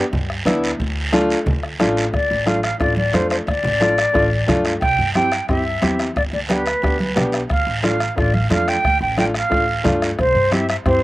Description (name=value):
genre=latin, cumbia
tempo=179 BPM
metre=4/4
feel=straight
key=D dorian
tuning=A4 = 436 Hz
part: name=warm upright piano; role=accompaniment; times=0.0-11.0 s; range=A3 to G4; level=-21 LUFS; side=left 1 dB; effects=none
part: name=upright bass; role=bass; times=0.1-11.0 s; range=G1 to G2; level=-24 LUFS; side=equal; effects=none
part: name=bombo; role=percussion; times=0.1-11.0 s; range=none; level=-24 LUFS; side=equal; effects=none
part: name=congas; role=percussion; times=0.1-10.7 s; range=none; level=-25 LUFS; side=right 1 dB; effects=none
part: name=guiro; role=percussion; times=0.1-11.0 s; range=none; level=-28 LUFS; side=right 3 dB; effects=none
part: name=concert flute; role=melody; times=2.1-11.0 s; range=B4 to G5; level=-19 LUFS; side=equal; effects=none
room=little or no reverb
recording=recorded outdoors, with no room sound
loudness=-16 LUFS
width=side -17 dB against mid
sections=0.0-2.1 A section; 2.1-11.0 B section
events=none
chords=0.0 G; 0.8 Dm; 4.8 C; 6.2 G; 7.5 Dm; 10.2 C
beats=0.13 0.46 | 0.80 1.13 1.47 1.80 | 2.14 2.47 2.81 3.14 | 3.48 3.81 4.15 4.48 | 4.82 5.15 5.49 5.83 | 6.16 6.50 6.83 7.17 | 7.50 7.84 8.17 8.51 | 8.84 9.18 9.51 9.85 | 10.18 10.52 10.85